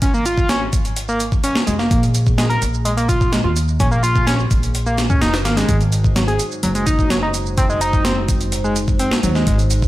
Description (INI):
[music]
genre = breakbeat, breaks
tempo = 127 BPM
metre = 4/4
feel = straight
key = unclear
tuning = A4 = 440 Hz
[part]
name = overdriven synth lead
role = riff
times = 0.0-9.5 s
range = Gb3 to Bb4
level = -20 LUFS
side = equal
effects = dub echo
[part]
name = upright bass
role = bass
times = 0.0-9.9 s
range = F1 to Eb2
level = -20 LUFS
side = equal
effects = none
[part]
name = breakbeat sampler-style drum kit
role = drums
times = 0.0-9.9 s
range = hi-hat, kick drum, snare drum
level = -18 LUFS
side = equal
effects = overdrive
[part]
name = shaker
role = drums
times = 0.0-9.9 s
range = none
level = -31 LUFS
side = right 8 dB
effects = none
[part]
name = dark analog pad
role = sustained chords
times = 5.7-9.9 s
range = Ab3 to C5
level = -26 LUFS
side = right 1 dB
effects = wide subtle chorus, sidechain pumping
[sound]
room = digital ambience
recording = none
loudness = -15 LUFS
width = side -16 dB against mid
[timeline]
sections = 0.0-9.9 A section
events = none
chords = 0.0 Bb7(no3); 5.7 Ab7